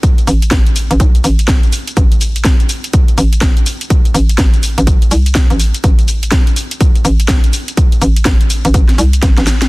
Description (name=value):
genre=bass house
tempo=124 BPM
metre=4/4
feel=swing 62% on 16ths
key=A minor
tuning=A4 = 440 Hz
part: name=electronic kick drum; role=drums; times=0.0-9.3 s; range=none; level=-11 LUFS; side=equal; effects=overdrive
part: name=garage drum kit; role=drums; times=0.0-9.7 s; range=hi-hat, shaker, snare drum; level=-18 LUFS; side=equal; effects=overdrive
part: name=hollow knocking FM bass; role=bass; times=0.3-9.7 s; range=A1 to C2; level=-12 LUFS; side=equal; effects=overdrive, sidechain pumping
room=little or no reverb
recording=dense, heavily limited modern master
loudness=-9 LUFS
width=side -22 dB against mid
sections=0.0-9.7 A section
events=drum fill 9.2-9.7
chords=none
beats=| 0.03 0.52 1.00 1.48 | 1.97 2.45 2.94 3.42 | 3.90 4.39 4.87 5.36 | 5.84 6.32 6.81 7.29 | 7.77 8.26 8.74 9.23